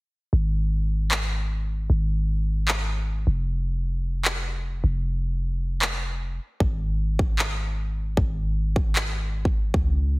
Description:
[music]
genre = future bass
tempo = 153 BPM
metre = 4/4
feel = half-time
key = unclear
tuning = A4 = 440 Hz
[part]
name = warm 808-style bass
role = bass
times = 0.3-10.2 s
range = F1 to Db2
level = -24 LUFS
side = equal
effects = sidechain pumping
[part]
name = electronic handclaps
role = drums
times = 1.1-9.0 s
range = none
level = -26 LUFS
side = equal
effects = studio reverb
[part]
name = electronic kick drum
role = drums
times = 6.6-9.8 s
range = none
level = -23 LUFS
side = equal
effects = overdrive, studio reverb
[sound]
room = little or no reverb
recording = heavily compressed radio sound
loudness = -23 LUFS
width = side -23 dB against mid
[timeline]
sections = 0.3-10.2 A section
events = none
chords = none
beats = | 0.33 0.72 1.11 1.51 | 1.90 2.29 2.68 3.07 | 3.47 3.86 4.25 4.64 | 5.04 5.43 5.82 6.21 | 6.60 7.00 7.39 7.78 | 8.17 8.56 8.96 9.35 | 9.74 10.13

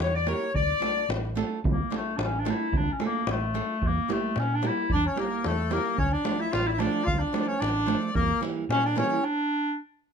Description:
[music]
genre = balkan folk, Balkan wedding band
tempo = 111 BPM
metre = 2/4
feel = swing 54% on 16ths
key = D harmonic minor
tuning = A4 = 440 Hz
[part]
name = warm clarinet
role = melody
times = 0.0-9.8 s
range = A3 to D5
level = -28 LUFS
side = left 1 dB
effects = none
[part]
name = accordion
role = second line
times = 0.0-1.1, 4.9-9.2 s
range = A4 to F5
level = -33 LUFS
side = left 2 dB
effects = none
[part]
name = hollow-body short-scale fingered electric bass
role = bass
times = 0.0-9.0 s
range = A1 to Bb2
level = -29 LUFS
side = equal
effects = none
[part]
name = davul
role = percussion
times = 0.0-9.1 s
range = none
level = -32 LUFS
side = equal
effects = none
[part]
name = flamenco guitar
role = accompaniment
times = 0.3-9.2 s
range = E3 to Bb4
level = -31 LUFS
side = right 7 dB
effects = none
[sound]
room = light reverb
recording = close, detailed microphones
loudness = -24 LUFS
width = side -6 dB against mid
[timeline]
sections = 0.0-1.6 A section; 1.6-10.1 A section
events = stop 9.2-10.1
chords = 0.0 Edim; 0.6 Dm; 3.8 Edim; 6.0 Dm; 8.2 Edim; 9.2 N.C.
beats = 0.00 | 0.55 1.10 | 1.64 2.19 | 2.73 3.28 | 3.82 4.37 | 4.91 5.45 | 5.99 6.53 | 7.07 7.61 | 8.15 8.69 | 9.23 9.77

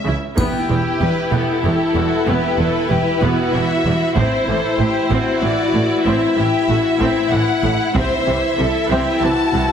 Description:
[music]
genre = cinematic, epic orchestral film score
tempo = 95 BPM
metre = 3/4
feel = straight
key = E minor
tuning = A4 = 440 Hz
[part]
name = rich symphonic violin section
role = melody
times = 0.0-9.7 s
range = G4 to A5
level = -22 LUFS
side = left 2 dB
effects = none
[part]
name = rich symphonic violin section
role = second line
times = 0.0-9.7 s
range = E4 to E5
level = -23 LUFS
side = left 3 dB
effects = none
[part]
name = dark French horn section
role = sustained chords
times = 0.0-9.7 s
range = E3 to E4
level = -23 LUFS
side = left 3 dB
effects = none
[part]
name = rich symphonic viola section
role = accompaniment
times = 0.1-9.7 s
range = E3 to E4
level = -21 LUFS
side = right 1 dB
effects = none
[part]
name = clear symphonic double bass section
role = bass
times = 0.1-9.6 s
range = E1 to C#2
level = -23 LUFS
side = right 3 dB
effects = none
[part]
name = rich symphonic cello section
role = bass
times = 0.1-9.6 s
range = E2 to C#3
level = -23 LUFS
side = right 2 dB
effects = none
[part]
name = solo taiko drums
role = drums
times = 0.4-9.2 s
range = none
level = -25 LUFS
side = equal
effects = none
[part]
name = triangle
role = percussion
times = 0.4-1.6 s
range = none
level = -36 LUFS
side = left 5 dB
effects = none
[sound]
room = moderate scoring stage reverb, RT60 1.6 s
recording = heavily compressed radio sound, multiband compression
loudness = -15 LUFS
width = side -8 dB against mid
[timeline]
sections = 0.4-9.7 A section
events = none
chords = 0.4 Em; 4.2 Am; 8.0 C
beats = | 0.38 1.01 1.64 | 2.27 2.90 3.54 | 4.17 4.80 5.43 | 6.06 6.69 7.32 | 7.96 8.59 9.22

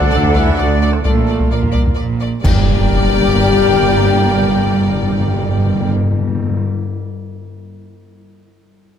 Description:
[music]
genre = cinematic, epic orchestral film score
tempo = 132 BPM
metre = 3/4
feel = straight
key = G minor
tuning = A4 = 440 Hz
[part]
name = mellow hollow silver concert flute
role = second line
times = 0.0-5.9 s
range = A4 to G5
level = -29 LUFS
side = left 1 dB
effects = none
[part]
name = rich studio violin section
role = second line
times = 0.0-5.9 s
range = A4 to G5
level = -30 LUFS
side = left 3 dB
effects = none
[part]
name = rich symphonic viola section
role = accompaniment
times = 0.0-5.9 s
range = Bb3 to Bb4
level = -25 LUFS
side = right 2 dB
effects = none
[part]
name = clear trombone section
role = sustained chords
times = 0.0-5.9 s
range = A2 to A3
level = -30 LUFS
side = right 5 dB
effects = none
[part]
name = clear woodwind section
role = sustained chords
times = 0.0-5.9 s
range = D4 to G5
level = -24 LUFS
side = equal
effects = none
[part]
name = mellow French horn section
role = sustained chords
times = 0.0-5.9 s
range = A3 to G4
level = -20 LUFS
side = left 10 dB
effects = none
[part]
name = dark trumpet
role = stabs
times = 0.0-5.9 s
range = G4 to E5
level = -28 LUFS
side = right 4 dB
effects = none
[part]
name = rich chamber cello section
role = bass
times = 0.0-5.9 s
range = D2 to Bb2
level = -19 LUFS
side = right 4 dB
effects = none
[part]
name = rich symphonic double bass section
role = bass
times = 0.0-5.9 s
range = G1 to D2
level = -20 LUFS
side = right 3 dB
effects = none
[part]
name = solo taiko drums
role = drums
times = 0.0-2.5 s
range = none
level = -17 LUFS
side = equal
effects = none
[part]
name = timpani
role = percussion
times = 0.0-0.3, 2.4-6.6 s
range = G2 to D3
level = -19 LUFS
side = left 3 dB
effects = none
[part]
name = bright symphonic violin section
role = melody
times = 0.1-5.9 s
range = D5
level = -24 LUFS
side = left 4 dB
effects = none
[part]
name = clash cymbals and concert bass drum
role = percussion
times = 2.4-3.3 s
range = none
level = -21 LUFS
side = equal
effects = none
[part]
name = impact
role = sound effects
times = 2.4-3.8 s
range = none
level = -22 LUFS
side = equal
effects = none
[sound]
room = moderate scoring stage reverb, RT60 1.8 s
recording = none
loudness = -12 LUFS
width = side -8 dB against mid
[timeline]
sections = 0.0-2.4 A section; 2.4-5.2 B section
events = band accent 2.4-2.9; impact 2.4-3.8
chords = 0.0 D; 1.1 Bb; 2.4 Gm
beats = 0.13 0.59 | 1.05 1.51 1.98 | 2.44 2.90 3.35 | 3.80 4.26 4.71

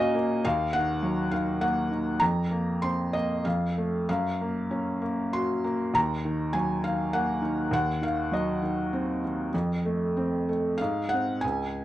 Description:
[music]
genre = classical, lyrical solo piano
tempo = 94-104 BPM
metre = 3/4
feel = rubato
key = unclear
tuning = A4 = 439 Hz
[part]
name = felt-muted upright piano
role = solo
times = 0.0-11.8 s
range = Db2 to C6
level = -25 LUFS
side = equal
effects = none
[sound]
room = light reverb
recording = dark, warm production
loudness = -25 LUFS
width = side -14 dB against mid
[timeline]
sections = 0.0-11.4 A section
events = none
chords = 0.4 Ebm; 2.2 Fsus4; 3.5 F; 4.1 Gb; 5.9 Ebm; 7.7 Cdim/Eb; 9.5 F; 10.8 Ab7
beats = | 0.45 1.03 1.61 | 2.21 2.82 3.45 | 4.08 4.70 5.33 | 5.94 6.53 7.12 | 7.72 8.32 8.93 | 9.53 10.15 10.79 | 11.43

